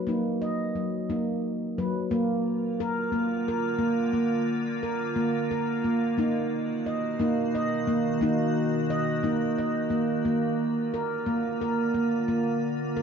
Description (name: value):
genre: world meditative, meditative tuned percussion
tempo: 59 BPM (dotted quarters)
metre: 6/8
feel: straight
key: unclear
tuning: A4 = 440 Hz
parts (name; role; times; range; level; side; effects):
- handpan; arpeggios; 0.0-13.0 s; F#3 to D#5; -25 LUFS; right 1 dB; none
- icy glass pad; sustained chords; 2.9-13.0 s; B2 to F#4; -31 LUFS; left 1 dB; chorus, built-in reverb
room: wet recital hall reverb, RT60 1.3 s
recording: dark, warm production, nothing above 7.8 kHz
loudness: -25 LUFS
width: side -6 dB against mid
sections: 0.0-2.1 A section; 2.1-13.0 B section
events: none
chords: 0.0 B; 2.1 Bb; 6.2 B; 10.3 Bb